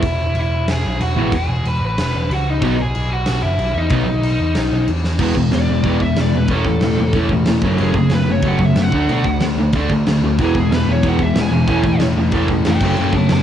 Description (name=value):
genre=punk rock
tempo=186 BPM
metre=4/4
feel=straight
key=E major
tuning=A4 = 441 Hz
part: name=high-gain lead guitar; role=melody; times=0.0-13.4 s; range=D#4 to B5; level=-23 LUFS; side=left 1 dB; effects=distortion, tape echo
part: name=overdriven picked electric bass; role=bass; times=0.0-13.4 s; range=E1 to B2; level=-20 LUFS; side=equal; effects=none
part: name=big rock drum kit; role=drums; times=0.0-13.4 s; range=crash cymbal, kick drum, snare drum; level=-22 LUFS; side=equal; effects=cassette tape
part: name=overdriven electric guitar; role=riff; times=1.2-13.4 s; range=B2 to E4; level=-20 LUFS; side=left 8 dB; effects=cassette tape
part: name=overdriven semi-hollow guitar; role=riff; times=1.2-13.4 s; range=E2 to D4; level=-19 LUFS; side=right 6 dB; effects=cassette tape
part: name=fuzz guitar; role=riff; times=10.4-13.4 s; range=E2 to A3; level=-26 LUFS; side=equal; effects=none
room=studio reverb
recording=home recording on cassette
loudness=-14 LUFS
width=side -10 dB against mid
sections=0.0-5.2 A section; 5.2-13.4 B section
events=half time 0.0-5.2; drum fill 5.0; lead electric guitar solo 5.2-13.4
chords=0.0 E; 2.6 B; 5.2 E; 6.5 A/E; 7.6 F#m; 8.9 D; 10.4 E; 11.7 A/E; 12.8 F#m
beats=| 0.04 0.37 0.69 1.01 | 1.34 1.66 1.98 2.31 | 2.63 2.95 3.27 3.60 | 3.92 4.24 4.56 4.89 | 5.21 5.53 5.86 6.18 | 6.50 6.83 7.15 7.48 | 7.80 8.13 8.45 8.78 | 9.10 9.42 9.75 10.07 | 10.39 10.72 11.04 11.37 | 11.69 12.01 12.34 12.66 | 12.98 13.30